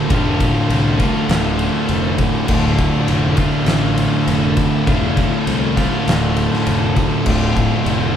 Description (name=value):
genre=stoner and doom metal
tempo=101 BPM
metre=4/4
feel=straight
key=D minor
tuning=A4 = 440 Hz
part: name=thick fuzz guitar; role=riff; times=0.0-8.2 s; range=D2 to D3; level=-21 LUFS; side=left 8 dB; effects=distortion
part: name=thick fuzz guitar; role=riff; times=0.0-8.2 s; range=D2 to D3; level=-20 LUFS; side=right 8 dB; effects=distortion
part: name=tight distorted guitar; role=riff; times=0.0-8.2 s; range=D2 to F4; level=-22 LUFS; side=left 1 dB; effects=distortion
part: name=growling fingered electric bass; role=bass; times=0.1-8.2 s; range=D1 to C2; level=-22 LUFS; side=left 1 dB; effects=overdrive, tube saturation
part: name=oversized low-tuned drum kit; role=drums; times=0.1-8.0 s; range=crash cymbal, kick drum, ride cymbal, snare drum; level=-20 LUFS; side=left 1 dB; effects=none
room=light reverb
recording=band playing live in one room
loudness=-14 LUFS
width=side -9 dB against mid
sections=0.0-8.2 A section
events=none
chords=0.0 Dm